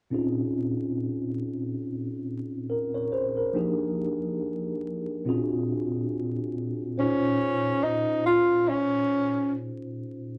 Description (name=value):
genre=R&B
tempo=70 BPM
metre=4/4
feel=swing 57% on 16ths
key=Bb minor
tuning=A4 = 441 Hz
part: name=mellow tine electric piano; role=accompaniment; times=0.1-10.4 s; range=Bb2 to Db5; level=-30 LUFS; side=equal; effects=none
part: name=breathy tenor saxophone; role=melody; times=7.0-9.5 s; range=Db4 to F4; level=-25 LUFS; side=equal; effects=none
room=moderate studio reverb, RT60 0.6 s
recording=vinyl crackle, nothing above 10.5 kHz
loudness=-28 LUFS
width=mono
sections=0.1-7.0 A section; 7.0-10.4 B section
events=none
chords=0.1 Bbm9; 3.5 Fm11; 5.3 Bb7b13; 7.0 Bbm9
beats=| 0.11 0.97 1.83 2.69 | 3.54 4.40 5.26 6.11 | 6.97 7.83 8.69 9.54